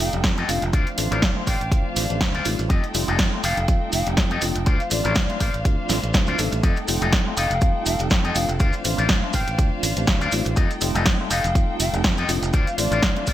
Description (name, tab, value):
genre	filtered disco house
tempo	122 BPM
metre	4/4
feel	swing 55% on 16ths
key	F mixolydian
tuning	A4 = 436 Hz
part	mellow hollow silver concert flute	melody	0.0-13.3 s	D5 to G5	-30 LUFS	left 1 dB	sidechain pumping, low-pass filter
part	tine electric piano	accompaniment	0.0-13.2 s	F3 to A4	-30 LUFS	equal	medium stereo tremolo, phaser, sidechain pumping, low-pass filter
part	rich chamber string section	sustained chords	0.0-13.3 s	D4 to G5	-31 LUFS	left 1 dB	sidechain pumping, low-pass filter
part	fingered electric bass	bass	0.0-13.3 s	F1 to F2	-26 LUFS	equal	sidechain pumping, low-pass filter
part	punchy analog drum machine	drums	0.0-13.3 s	hi-hat, snare drum	-24 LUFS	equal	sidechain pumping on hats, sidechain pumping on cymbals, gated reverb
part	electric guitar with an envelope filter	riff	0.1-13.3 s	F4 to F5	-28 LUFS	left 4 dB	sidechain pumping, low-pass filter
part	maracas	percussion	0.1-13.3 s	none	-34 LUFS	right 2 dB	none
part	electronic kick drum	drums	0.2-13.3 s	none	-21 LUFS	equal	none
room	light reverb, digital ambience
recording	bright 1980s-style digital production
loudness	-19 LUFS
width	side -13 dB against mid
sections	0.0-13.3 A section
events	none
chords	0.0 F9; 0.7 Dm7; 2.7 F9; 4.7 Dm7; 6.6 F9; 8.6 Dm7; 10.6 F9; 12.5 Dm7